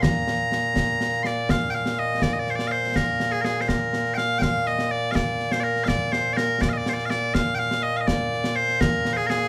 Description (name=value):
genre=scottish traditional, Scottish pipe music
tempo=82 BPM (dotted quarters)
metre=6/8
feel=straight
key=Bb mixolydian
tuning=A4 = 440 Hz
part: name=loud bright bagpipes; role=melody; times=0.0-9.5 s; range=Bb2 to C6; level=-25 LUFS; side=equal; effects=none
part: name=concert snare drum and concert bass drum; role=drums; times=0.0-9.4 s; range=none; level=-28 LUFS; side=equal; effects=none
room=moderate studio reverb, RT60 0.6 s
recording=band playing live in one room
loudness=-24 LUFS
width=mono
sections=0.0-1.5 A section; 1.5-9.5 A section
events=none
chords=none